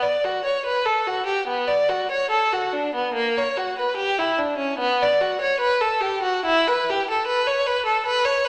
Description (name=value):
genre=classical, baroque-style suite movement for unaccompanied violin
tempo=66-76 BPM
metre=4/4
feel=rubato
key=B minor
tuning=A4 = 439 Hz
part: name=rich violin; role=solo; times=0.0-8.5 s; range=A#3 to D5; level=-22 LUFS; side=equal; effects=none
room=wet recital hall reverb, RT60 1.5 s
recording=none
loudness=-22 LUFS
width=mono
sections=0.0-8.5 A section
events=none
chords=none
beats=0.67 1.50 2.32 | 3.15 3.98 4.79 5.61 | 6.45 7.28 8.07